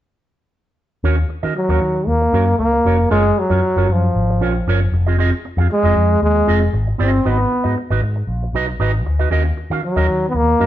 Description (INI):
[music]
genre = disco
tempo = 116 BPM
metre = 4/4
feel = straight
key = Eb minor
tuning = A4 = 442 Hz
[part]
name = electric guitar with an envelope filter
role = accompaniment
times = 1.0-10.7 s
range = C4 to F5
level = -23 LUFS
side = right 6 dB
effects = none
[part]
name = picked electric bass with an envelope filter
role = bass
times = 1.0-10.7 s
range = F1 to Eb3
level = -18 LUFS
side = left 1 dB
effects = none
[part]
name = warm trombone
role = melody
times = 1.6-10.7 s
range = F3 to C4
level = -16 LUFS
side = equal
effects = none
[sound]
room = moderate stone room reverb, RT60 1.0 s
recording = band playing live in one room, nothing above 7.9 kHz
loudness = -14 LUFS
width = side -12 dB against mid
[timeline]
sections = 1.0-10.7 A section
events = none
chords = 1.0 Ebm7; 3.1 Gbmaj7; 4.9 Fm7; 7.2 Abm7; 9.3 Ebm7